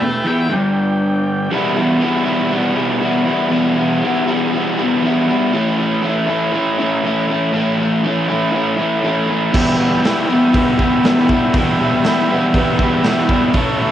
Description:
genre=garage rock duo or trio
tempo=120 BPM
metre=4/4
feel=straight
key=E dorian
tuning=A4 = 440 Hz
part: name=octave-fuzz lead guitar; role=melody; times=0.0-0.5 s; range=E5 to A5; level=-22 LUFS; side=equal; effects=distortion, cassette tape
part: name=overdriven combo organ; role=sustained chords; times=0.0-1.5, 9.5-13.9 s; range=G4 to G5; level=-22 LUFS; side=right 1 dB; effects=cassette tape
part: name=crunchy overdriven guitar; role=riff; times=0.0-13.9 s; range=E2 to E4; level=-14 LUFS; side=equal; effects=cassette tape
part: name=raw garage drum kit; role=drums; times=9.5-13.7 s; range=crash cymbal, hi-hat, kick drum, snare drum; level=-20 LUFS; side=equal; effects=cassette tape
room=light reverb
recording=home recording on cassette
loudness=-14 LUFS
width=side -11 dB against mid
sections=0.0-1.5 A section; 1.5-13.9 B section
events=break 0.0-1.5; lead electric guitar solo 0.0-1.5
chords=0.0 Em; 0.5 G5; 1.5 Em; 5.5 A; 9.5 Em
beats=0.01 0.52 1.02 | 1.53 2.03 2.53 3.04 | 3.54 4.04 4.54 5.04 | 5.54 6.04 6.54 7.04 | 7.54 8.05 8.55 9.05 | 9.55 10.05 10.55 11.05 | 11.55 12.05 12.55 13.05 | 13.55

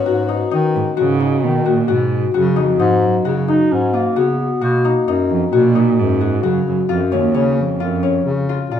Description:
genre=contemporary instrumental, chamber music in an uneven meter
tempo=132 BPM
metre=5/4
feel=straight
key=G# dorian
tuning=A4 = 440 Hz
part: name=dark clarinet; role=second line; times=0.0-0.1, 3.5-5.2 s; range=A#3 to D#4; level=-20 LUFS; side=right 2 dB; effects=none
part: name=Celtic harp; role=arpeggios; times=0.0-8.8 s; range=B3 to F#4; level=-18 LUFS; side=left 7 dB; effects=none
part: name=breathy bass clarinet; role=bass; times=0.1-8.8 s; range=F#2 to D#3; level=-20 LUFS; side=left 1 dB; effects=none
part: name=dark cello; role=melody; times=0.8-8.5 s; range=D#2 to C#3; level=-19 LUFS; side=right 7 dB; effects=none
room=light reverb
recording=minimal, uncompressed stereo recording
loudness=-14 LUFS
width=side -9 dB against mid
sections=0.1-8.8 A section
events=none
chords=0.1 G#m7; 2.3 C#7sus4; 4.6 Bmaj7; 6.9 F#maj7(no3)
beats=| 0.07 0.53 0.98 1.44 1.89 | 2.35 2.80 3.25 3.71 4.16 | 4.62 5.07 5.53 5.98 6.44 | 6.89 7.35 7.80 8.26 8.72

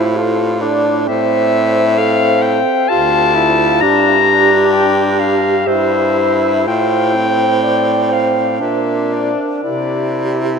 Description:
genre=classical, lyrical piece for single-reed quartet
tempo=58-66 BPM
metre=3/4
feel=rubato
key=F major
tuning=A4 = 438 Hz
part: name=clear clarinet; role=melody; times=0.0-10.4 s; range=C5 to Bb5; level=-16 LUFS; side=left 4 dB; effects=none
part: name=mellow alto saxophone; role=second line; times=0.0-10.6 s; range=F4 to E5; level=-18 LUFS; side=right 4 dB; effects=none
part: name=clear tenor saxophone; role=accompaniment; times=0.0-10.6 s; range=C4 to F4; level=-18 LUFS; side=left 2 dB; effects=none
part: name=bright baritone saxophone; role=bass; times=0.0-10.6 s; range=D2 to C3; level=-20 LUFS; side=right 3 dB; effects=none
room=wet cathedral reverb, RT60 6.6 s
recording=in a vast, echoing space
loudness=-11 LUFS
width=side -6 dB against mid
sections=0.0-10.6 A section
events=none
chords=0.0 F/A; 1.1 Am; 2.9 Dm; 3.8 Gm; 5.7 C/G; 6.7 F/A; 8.6 Bb; 9.6 C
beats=0.18 | 1.09 2.00 2.90 | 3.82 4.74 5.67 | 6.67 7.63 8.61 | 9.63

